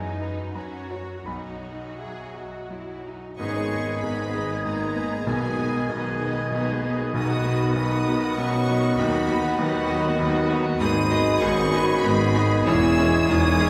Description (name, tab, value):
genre	classical, romantic movement for piano and orchestra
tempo	82-100 BPM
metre	3/4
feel	rubato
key	B major, G# minor from 3.4 s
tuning	A4 = 441 Hz
part	clear baby grand piano	melody	0.0-13.7 s	E1 to B5	-29 LUFS	equal	none
part	rich symphonic violin section	melody	0.0-13.7 s	B4 to E6	-37 LUFS	equal	none
part	rich symphonic violin section	second line	0.0-13.7 s	D#4 to F#5	-40 LUFS	equal	none
part	rich symphonic viola section	accompaniment	0.0-13.7 s	F#3 to F#4	-38 LUFS	equal	none
part	rich symphonic cello section	bass	0.0-13.7 s	E2 to G#4	-35 LUFS	equal	none
part	rich symphonic double bass section	bass	0.0-13.7 s	E1 to F#2	-35 LUFS	equal	none
part	large flute ensemble	second line	3.4-13.7 s	B5 to G#6	-34 LUFS	equal	none
part	warm clarinet	second line	3.4-13.7 s	E4 to G#4	-37 LUFS	equal	none
part	warm cor anglais	second line	3.4-13.7 s	C#5 to D#5	-36 LUFS	equal	none
part	mellow bassoon	accompaniment	3.4-13.7 s	D#3 to G#3	-36 LUFS	equal	none
part	dark trombone section	sustained chords	3.4-13.7 s	none	barely audible	none	none
part	mellow French horn section	sustained chords	3.4-13.7 s	D#3 to E4	-32 LUFS	equal	none
part	clear trumpet section	stabs	3.4-13.7 s	F#4 to G#4	-35 LUFS	equal	none
part	mellow tuba	bass	3.4-13.7 s	E1 to D#2	-35 LUFS	equal	none
part	timpani	percussion	5.3-8.0 s	B2	-35 LUFS	equal	none
room	wet concert hall reverb, RT60 2.3 s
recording	recorded in a church or concert hall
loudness	-23 LUFS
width	mono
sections	0.0-3.4 A section; 3.4-13.7 B section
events	none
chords	0.0 B/F#; 0.6 F#; 1.3 B; 3.4 G#m; 5.3 G#m/B; 7.1 B; 9.0 B/D#; 10.8 G#m7; 12.7 C#m/E